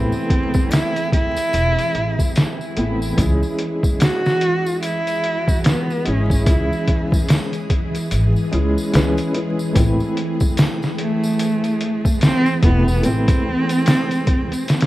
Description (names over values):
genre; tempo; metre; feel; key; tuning
trip hop; 73 BPM; 4/4; swing 60% on 16ths; unclear; A4 = 440 Hz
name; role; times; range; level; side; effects
warm cello; melody; 0.0-14.9 s; A3 to F#4; -21 LUFS; right 1 dB; vintage 12-bit sampler grit, tape echo
felt-muted upright piano; accompaniment; 0.0-14.9 s; C3 to B4; -24 LUFS; equal; tremolo, vintage 12-bit sampler grit, tape echo
string machine, cellos; sustained chords; 0.0-14.9 s; E3 to G#4; -26 LUFS; equal; ensemble chorus, vintage 12-bit sampler grit
upright bass; bass; 0.0-13.3 s; E1 to C#2; -20 LUFS; equal; none
tambourine and triangle; percussion; 0.1-14.9 s; none; -38 LUFS; equal; none
trip hop sampler-style drum kit; drums; 0.3-14.9 s; hi-hat, kick drum, snare drum; -18 LUFS; equal; overdrive, vintage 12-bit sampler grit
room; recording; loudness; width
studio reverb; rough home demo mix, vinyl crackle; -16 LUFS; side -16 dB against mid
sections
0.0-14.9 A section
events
none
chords
0.0 Amadd9; 3.2 C#m; 9.8 Amadd9